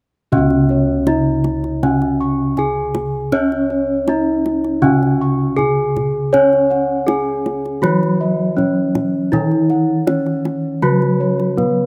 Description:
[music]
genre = Javanese gamelan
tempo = 80 BPM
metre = 4/4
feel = straight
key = C# slendro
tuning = A4 = 438 Hz
[part]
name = gamelan-type bronze metallophone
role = melody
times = 0.3-11.9 s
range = B3-25c to C#5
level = -20 LUFS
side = equal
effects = none
[part]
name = gamelan-type bronze metallophone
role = accompaniment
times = 0.3-11.9 s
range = C#3 to C#4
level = -22 LUFS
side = equal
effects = none
[part]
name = gamelan-type bossed gongs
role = arpeggios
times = 0.3-11.9 s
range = B4-25c to C#6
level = -26 LUFS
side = equal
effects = none
[part]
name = gamelan-type bossed gongs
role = bass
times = 0.3-11.9 s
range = C#2 to C#5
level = -24 LUFS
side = equal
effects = none
[part]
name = kendang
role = percussion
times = 0.3-11.8 s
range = none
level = -26 LUFS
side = equal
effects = none
[sound]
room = light reverb, small room ambience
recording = rough home demo mix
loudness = -17 LUFS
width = mono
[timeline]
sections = 0.3-11.9 A section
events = none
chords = none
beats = | 0.33 1.08 1.83 2.58 | 3.33 4.08 4.83 5.58 | 6.33 7.08 7.83 8.58 | 9.33 10.08 10.83 11.58

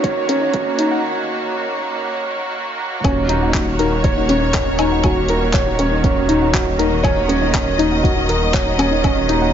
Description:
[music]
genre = piano and strings electronica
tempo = 120 BPM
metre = 4/4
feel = straight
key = Eb minor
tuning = A4 = 440 Hz
[part]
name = clear symphonic string section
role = sustained chords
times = 0.0-9.5 s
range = Eb3 to Eb5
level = -22 LUFS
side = right 1 dB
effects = none
[part]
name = soft round pluck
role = arpeggios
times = 0.0-9.5 s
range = Db4 to Gb5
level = -23 LUFS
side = left 4 dB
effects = chorus, sidechain pumping, digital delay
[part]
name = felt-muted upright piano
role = riff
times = 0.0-9.5 s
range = Db4 to Db5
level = -19 LUFS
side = right 2 dB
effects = digital delay
[part]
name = deep house drum kit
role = drums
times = 0.0-9.4 s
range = handclaps, hi-hat, woodblock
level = -24 LUFS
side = left 2 dB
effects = none
[part]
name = electronic kick drum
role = drums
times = 0.0-9.1 s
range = none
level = -20 LUFS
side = equal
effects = none
[part]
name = dark detuned saw bass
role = bass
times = 3.0-9.5 s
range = Eb1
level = -21 LUFS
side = equal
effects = tube saturation, sidechain pumping
[sound]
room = light reverb, digital ambience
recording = high-pass filter, nothing above 7.5 kHz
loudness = -15 LUFS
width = side -9 dB against mid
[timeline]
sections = 0.0-3.0 A section; 3.0-9.5 B section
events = build-up 0.0-3.0; filter sweep 0.0-3.0; break 1.0-3.0; drop 3.0-9.5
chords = 0.0 Ebm7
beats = 0.04 0.54 | 1.04 1.54 2.04 2.54 | 3.04 3.54 4.04 4.54 | 5.04 5.54 6.04 6.54 | 7.04 7.54 8.04 8.54 | 9.04

